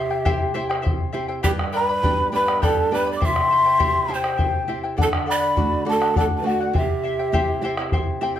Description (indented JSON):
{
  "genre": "andean folk, Andean ensemble",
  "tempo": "68 BPM (dotted quarters)",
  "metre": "6/8",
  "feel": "straight",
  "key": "unclear",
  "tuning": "A4 = 440 Hz",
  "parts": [
    { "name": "breathy mellow large quena", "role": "melody", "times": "0.0-7.9 s", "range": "E5 to D6", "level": "-22 LUFS", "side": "left 2 dB", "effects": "slapback echo, plate reverb" },
    { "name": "breathy large pan pipes", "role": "second line", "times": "0.0-7.9 s", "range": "F#4 to E5", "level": "-26 LUFS", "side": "right 3 dB", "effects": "none" },
    { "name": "charango", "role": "accompaniment", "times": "0.0-8.4 s", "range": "E4 to B5", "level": "-27 LUFS", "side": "left 5 dB", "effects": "none" },
    { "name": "nylon-string guitar", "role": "accompaniment", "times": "0.0-8.4 s", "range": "G2 to G4", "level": "-29 LUFS", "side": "right 4 dB", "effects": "none" },
    { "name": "bombo", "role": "percussion", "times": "0.3-8.1 s", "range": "none", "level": "-24 LUFS", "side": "equal", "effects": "none" }
  ],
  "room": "moderate studio reverb, RT60 0.6 s",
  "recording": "faint mains hum",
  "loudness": "-18 LUFS",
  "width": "side -10 dB against mid",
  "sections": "0.0-8.4 A section",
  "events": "none",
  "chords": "0.0 C; 1.4 G; 3.2 C; 5.0 D; 6.7 C"
}